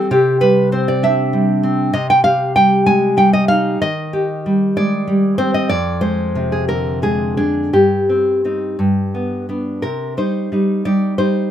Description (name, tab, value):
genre	romantic piece for solo classical guitar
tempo	55-67 BPM (dotted quarters)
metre	6/8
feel	rubato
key	C minor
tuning	A4 = 440 Hz
part	nylon-string guitar	solo	0.0-11.5 s	F2 to Ab5	-14 LUFS	equal	none
room	light reverb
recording	close, detailed microphones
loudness	-14 LUFS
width	side -10 dB against mid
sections	0.0-9.8 A section; 9.8-11.5 B section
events	none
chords	0.1 C; 1.9 Cm; 3.8 Cm/Eb; 5.7 Dm7b5/F; 7.7 Cm/G; 8.8 G; 9.8 Cm